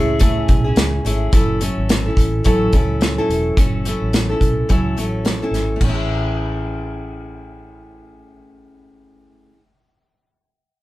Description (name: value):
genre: indie pop, bedroom pop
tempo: 107 BPM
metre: 4/4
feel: swing 60% on 16ths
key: A major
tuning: A4 = 439 Hz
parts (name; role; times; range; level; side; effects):
- picked steel-string acoustic guitar; accompaniment; 0.0-9.6 s; F#3 to A4; -21 LUFS; equal; warbly pitch drift
- vintage muted fingered electric bass; bass; 0.0-9.5 s; E1 to C#2; -22 LUFS; equal; none
- loose indie drum kit; drums; 0.2-6.0 s; crash cymbal, hi-hat, kick drum, snare drum; -18 LUFS; equal; none
room: moderate studio reverb, RT60 0.5 s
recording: band playing live in one room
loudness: -15 LUFS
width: side -17 dB against mid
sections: 0.0-1.3 A section; 1.3-5.8 B section; 5.8-8.1 C section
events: none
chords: 0.0 Amaj7; 1.3 F#m7; 5.8 Amaj7